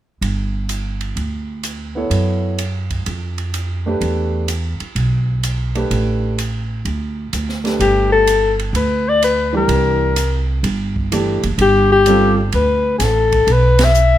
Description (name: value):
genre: jazz, small-group swing and bop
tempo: 127 BPM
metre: 4/4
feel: swing 67% on 8ths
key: G mixolydian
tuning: A4 = 442 Hz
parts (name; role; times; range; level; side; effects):
- upright bass; bass; 0.2-14.2 s; F#1 to F#2; -18 LUFS; right 1 dB; none
- open jazz drum kit; drums; 0.2-14.1 s; hi-hat, kick drum, ride cymbal, snare drum; -26 LUFS; right 3 dB; none
- warm concert grand piano; accompaniment; 2.0-12.4 s; E3 to C#5; -20 LUFS; right 2 dB; none
- breathy soprano saxophone; melody; 7.8-14.2 s; G4 to E5; -14 LUFS; left 4 dB; none
room: light reverb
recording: none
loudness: -15 LUFS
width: side -12 dB against mid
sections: 0.2-7.8 A section; 7.8-14.2 B section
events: band accent 13.7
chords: 0.2 G5; 2.1 F#m7; 3.1 F; 4.0 Em7; 5.9 Asus2; 6.9 D5; 7.8 Gadd9; 9.7 C13; 11.6 Gadd9